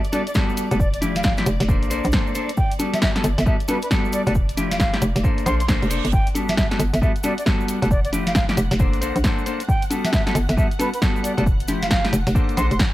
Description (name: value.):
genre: UK garage, two-step garage.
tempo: 135 BPM.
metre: 4/4.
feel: swing 63% on 16ths.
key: G major.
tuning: A4 = 438 Hz.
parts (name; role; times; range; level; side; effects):
soft string machine; sustained chords; 0.0-12.9 s; D5 to F#5; -37 LUFS; equal; ensemble chorus, sidechain pumping.
punchy analog drum machine; drums; 0.0-12.9 s; congas, hi-hat, snare drum; -25 LUFS; equal; none.
cabasa; percussion; 0.0-12.9 s; none; -38 LUFS; left 1 dB; none.
reedy silver concert flute; melody; 0.1-12.8 s; B4 to C6; -28 LUFS; right 1 dB; dub echo.
clean electric guitar; stabs; 0.1-12.7 s; F3 to C5; -25 LUFS; left 1 dB; vibrato effect.
electronic kick drum; drums; 0.4-12.9 s; none; -21 LUFS; equal; none.
hollow knocking FM bass; bass; 0.7-12.8 s; F1 to Bb1; -22 LUFS; equal; none.
reverse cymbal; sound effects; 5.6-6.1 s; none; -35 LUFS; right 10 dB; none.
room: digital ambience.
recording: none.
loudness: -18 LUFS.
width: side -16 dB against mid.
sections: 0.0-12.9 A section.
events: reverse cymbal 5.6-6.1.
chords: 0.0 Gmaj9; 0.8 Fmaj9; 1.7 Bbmaj9; 2.6 Gmaj9; 4.4 Fmaj9; 5.2 Bbmaj9; 6.1 Gmaj9; 7.9 Fmaj9; 8.8 Bbmaj9; 9.7 Gmaj9; 11.5 Fmaj9; 12.4 Bbmaj9.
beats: 0.35 | 0.80 1.24 1.69 2.13 | 2.57 3.02 3.46 3.91 | 4.35 4.80 5.24 5.68 | 6.13 6.57 7.02 7.46 | 7.91 8.35 8.80 9.24 | 9.69 10.13 10.57 11.02 | 11.46 11.91 12.35 12.80.